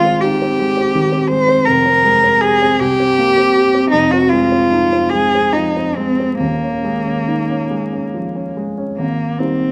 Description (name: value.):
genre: classical, impressionist duo for cello and grand piano.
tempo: 45-57 BPM (dotted quarters).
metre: 6/8.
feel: rubato.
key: Ab major.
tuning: A4 = 440 Hz.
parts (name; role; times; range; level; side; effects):
warm cello; melody; 0.0-9.7 s; Bb3 to C5; -17 LUFS; equal; none.
dark baby grand piano; accompaniment; 0.0-9.7 s; Eb1 to G4; -20 LUFS; equal; none.
room: moderate recital hall reverb, RT60 1.6 s.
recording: close, detailed microphones, vinyl crackle.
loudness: -15 LUFS.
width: mono.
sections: 0.0-9.0 A section.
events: none.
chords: 0.0 Abmaj7; 1.7 Fmadd9; 2.8 C5; 3.9 Fm7; 6.4 Eb9sus4; 9.0 Abmaj9.